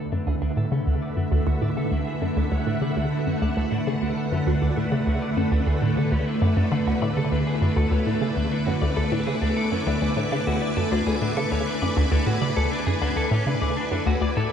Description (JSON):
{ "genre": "ambient, sequencer-driven space music", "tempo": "100 BPM", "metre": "4/4", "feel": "straight", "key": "D lydian", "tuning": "A4 = 440 Hz", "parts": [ { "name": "string machine, full ensemble", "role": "sustained chords", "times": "0.0-14.5 s", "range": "D3 to D6", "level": "-25 LUFS", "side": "equal", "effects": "ensemble chorus" }, { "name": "electric guitar at the edge of break-up", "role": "arpeggios", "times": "0.0-14.5 s", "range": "C#4 to D5", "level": "-32 LUFS", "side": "left 2 dB", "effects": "auto-pan, tape echo" }, { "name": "bubbling stepped-filter texture", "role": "texture", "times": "0.0-14.5 s", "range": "E4 to E5", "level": "-38 LUFS", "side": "left 4 dB", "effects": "chorus, built-in reverb" }, { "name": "hollow square pluck", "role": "riff", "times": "0.1-14.5 s", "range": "D2 to D3", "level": "-24 LUFS", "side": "equal", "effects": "chorus, phaser, tape echo" } ], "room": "moderate spring reverb, RT60 2.5 s", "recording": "echo-heavy mix", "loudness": "-21 LUFS", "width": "side -8 dB against mid", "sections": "0.0-14.5 A section", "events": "fade-in on clean electric guitar 0.0-14.5; fade-in on synth texture 0.0-14.5", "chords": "0.0 D6", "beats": "| 0.12 0.72 1.32 1.92 | 2.52 3.12 3.72 4.32 | 4.92 5.52 6.12 6.72 | 7.32 7.92 8.52 9.12 | 9.72 10.32 10.92 11.52 | 12.12 12.72 13.32 13.92 | 14.52" }